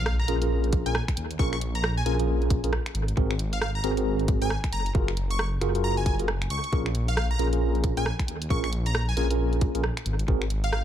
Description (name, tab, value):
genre	UK garage, two-step garage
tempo	135 BPM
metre	4/4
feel	swing 61% on 16ths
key	Bb minor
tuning	A4 = 440 Hz
part	plucky unison lead	melody	0.0-10.8 s	F5 to Db6	-33 LUFS	left 1 dB	phaser, analog delay
part	dark detuned saw bass	bass	0.0-10.8 s	Gb1 to Eb2	-27 LUFS	equal	none
part	impact	sound effects	0.0-1.4 s	none	-39 LUFS	equal	none
part	garage drum kit	drums	0.1-10.8 s	finger snaps, hi-hat, rim click	-33 LUFS	right 1 dB	analog delay
part	mellow tine electric piano	stabs	0.3-10.4 s	C4 to Bb4	-30 LUFS	right 1 dB	medium stereo tremolo, analog delay
part	electronic kick drum	drums	0.7-10.4 s	none	-26 LUFS	equal	none
room	digital ambience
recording	echo-heavy mix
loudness	-23 LUFS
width	side -10 dB against mid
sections	0.0-10.8 A section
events	impact 0.0-1.4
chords	0.0 Bbm7; 2.9 Ab9; 4.7 Gbmaj9; 6.7 Bbm7; 10.1 Ab9